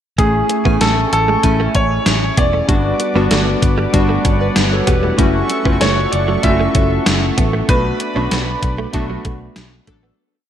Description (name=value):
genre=1980s-style pop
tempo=96 BPM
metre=4/4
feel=straight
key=unclear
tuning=A4 = 440 Hz
part: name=clear concert grand piano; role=melody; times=0.2-9.5 s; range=G#4 to E5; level=-20 LUFS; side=equal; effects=slapback echo, digital delay
part: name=warm analog keys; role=accompaniment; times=0.2-10.2 s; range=G3 to G#5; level=-19 LUFS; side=left 1 dB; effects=chorus
part: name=brassy analog pad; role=sustained chords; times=0.2-10.2 s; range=A3 to D6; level=-24 LUFS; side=right 2 dB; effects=chorus
part: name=direct-recorded clean electric guitar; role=riff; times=0.2-10.1 s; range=F#3 to C#4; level=-25 LUFS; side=right 5 dB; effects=ensemble chorus
part: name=vintage muted fingered electric bass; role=bass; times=0.2-10.1 s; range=E1 to B1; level=-20 LUFS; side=equal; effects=none
part: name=gated 80s digital drum machine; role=drums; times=0.2-10.0 s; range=hi-hat, kick drum, snare drum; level=-17 LUFS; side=equal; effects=gated reverb, gated reverb snare
part: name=funky polysynth comp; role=stabs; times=8.9-10.1 s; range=F#3 to A4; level=-33 LUFS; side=left 1 dB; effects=chorus
room=moderate lush hall reverb, RT60 1.7 s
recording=big arena sound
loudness=-13 LUFS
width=side -10 dB against mid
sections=0.2-10.2 verse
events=fade-out 7.7-10.2; band accent 7.7-10.2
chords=0.2 Amaj7; 2.7 Gmaj7; 5.2 F#m7; 7.7 Bm7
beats=| 0.19 0.81 1.44 2.06 | 2.69 3.31 3.94 4.56 | 5.19 5.81 6.44 7.06 | 7.69 8.31 8.94 9.56